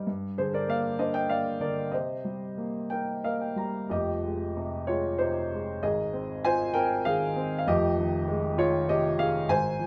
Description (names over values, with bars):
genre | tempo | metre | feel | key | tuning
classical, lyrical solo piano | 90-100 BPM | 3/4 | rubato | F minor from 3.9 s | A4 = 440 Hz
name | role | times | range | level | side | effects
warm baby grand piano | solo | 0.0-9.9 s | F1 to Bb5 | -28 LUFS | equal | none
room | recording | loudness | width
light reverb | none | -28 LUFS | mono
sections
0.0-3.9 A section; 3.9-9.9 B section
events
grand piano fill 2.9-3.9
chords
0.1 Gm; 1.9 Cm7; 3.9 Fm9; 5.8 Ab69; 7.7 Fm9